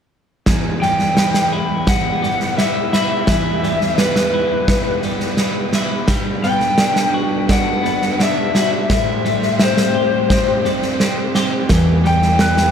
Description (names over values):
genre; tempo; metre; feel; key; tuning
post-rock; 85 BPM; 4/4; straight; E minor; A4 = 441 Hz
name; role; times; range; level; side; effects
rich studio string section; sustained chords; 0.5-12.7 s; E3 to C5; -29 LUFS; left 1 dB; none
twelve-string electric guitar; arpeggios; 0.5-12.7 s; E2 to G4; -22 LUFS; left 1 dB; digital delay
huge arena drum kit; drums; 0.5-12.7 s; kick drum, snare drum; -17 LUFS; right 1 dB; none
lead guitar through a small cranked amp; melody; 0.8-12.7 s; B4 to G5; -19 LUFS; left 2 dB; overdrive, digital delay
felt-muted upright piano; arpeggios; 11.7-12.7 s; B4 to F#6; -25 LUFS; right 2 dB; digital delay
fingered electric bass; bass; 11.7-12.7 s; E2; -17 LUFS; equal; none
room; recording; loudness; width
moderate echo chamber reverb, RT60 2.2 s; none; -14 LUFS; side -7 dB against mid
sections
0.5-12.7 A section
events
none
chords
0.5 Em; 6.1 Gmaj7; 8.9 Am7; 11.7 Em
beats
| 0.47 1.17 1.88 2.58 | 3.28 3.98 4.69 5.39 | 6.09 6.80 7.50 8.20 | 8.90 9.60 10.30 11.01 | 11.71 12.41